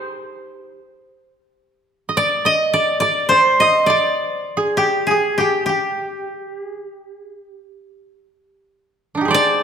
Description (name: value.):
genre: japanese traditional, Japanese chamber music.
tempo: 63-71 BPM.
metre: 4/4.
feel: rubato.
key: G miyako bushi.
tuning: A4 = 440 Hz.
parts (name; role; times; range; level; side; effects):
koto; melody; 0.0-9.6 s; G4 to Eb5; -17 LUFS; left 1 dB; none.
koto; second line; 0.0-9.6 s; D4 to Eb5; -21 LUFS; right 3 dB; none.
room: moderate scoring stage reverb, RT60 1.8 s.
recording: none.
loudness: -15 LUFS.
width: side -7 dB against mid.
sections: 0.0-9.3 A section.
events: none.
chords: none.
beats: 0.45 1.31 | 2.16 3.02 3.88 4.77 | 5.67 6.56 7.46 8.40 | 9.32.